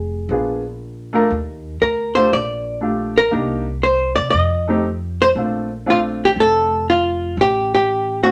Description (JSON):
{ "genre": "jazz, small-group swing and bop", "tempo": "119 BPM", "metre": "4/4", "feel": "swing 69% on 8ths", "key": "Bb major", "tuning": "A4 = 439 Hz", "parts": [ { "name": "archtop guitar, miked and amplified", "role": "melody", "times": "0.0-8.3 s", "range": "F4 to Eb5", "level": "-18 LUFS", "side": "equal", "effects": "none" }, { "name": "upright bass", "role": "bass", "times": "0.0-8.3 s", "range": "F1 to C3", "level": "-28 LUFS", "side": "equal", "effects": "none" }, { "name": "clear baby grand piano", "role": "accompaniment", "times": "0.3-8.3 s", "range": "A3 to Bb4", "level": "-22 LUFS", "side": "equal", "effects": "none" } ], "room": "moderate studio reverb, RT60 0.7 s", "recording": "none", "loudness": "-18 LUFS", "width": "mono", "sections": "0.0-8.3 A section", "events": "none", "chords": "0.3 Bb7b9; 1.3 Ebmaj9#11; 3.3 Cm7; 4.3 F7; 5.4 Bbmaj7; 7.4 A7(no3)" }